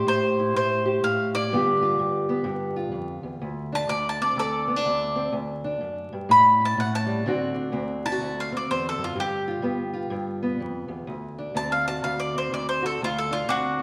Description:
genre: acoustic country blues, solo or duo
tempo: 126 BPM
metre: 4/4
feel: swing 63% on 8ths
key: unclear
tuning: A4 = 440 Hz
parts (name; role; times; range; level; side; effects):
- bowl-back mandolin; melody; 0.0-13.8 s; D4 to B5; -26 LUFS; equal; none
- fingerpicked steel-string acoustic guitar; accompaniment; 0.0-13.8 s; D2 to G4; -29 LUFS; equal; none
room: wet recital hall reverb, RT60 1.3 s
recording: recorded in a church or concert hall, vinyl crackle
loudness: -25 LUFS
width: mono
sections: 0.0-7.3 A section; 7.3-13.8 B section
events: mandolin solo 7.3-13.8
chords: 0.0 A5; 1.5 G7; 3.4 D7(no3); 6.3 A7; 7.3 D7; 9.2 G7; 11.1 D7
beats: 0.09 0.57 1.04 | 1.52 2.00 2.48 2.96 | 3.44 3.91 4.39 4.87 | 5.35 5.83 6.30 6.78 | 7.26 7.74 8.22 8.70 | 9.18 9.65 10.13 10.61 | 11.09 11.57 12.05 12.52 | 13.00 13.48

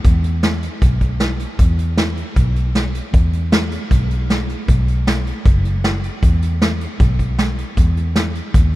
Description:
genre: honky-tonk and classic country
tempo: 155 BPM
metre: 4/4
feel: straight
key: unclear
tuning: A4 = 440 Hz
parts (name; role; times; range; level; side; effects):
- vintage muted fingered electric bass; bass; 0.0-8.8 s; F#1 to E2; -18 LUFS; equal; none
- vintage brush drum kit; drums; 0.0-8.8 s; hi-hat, kick drum, snare drum; -17 LUFS; equal; none
room: light reverb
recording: none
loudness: -15 LUFS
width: side -17 dB against mid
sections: 0.0-1.6 A section; 1.6-8.8 A section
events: none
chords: none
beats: | 0.05 0.43 0.82 1.20 | 1.59 1.98 2.36 2.75 | 3.13 3.52 3.91 4.29 | 4.68 5.07 5.45 5.84 | 6.22 6.61 7.00 7.38 | 7.77 8.15 8.54

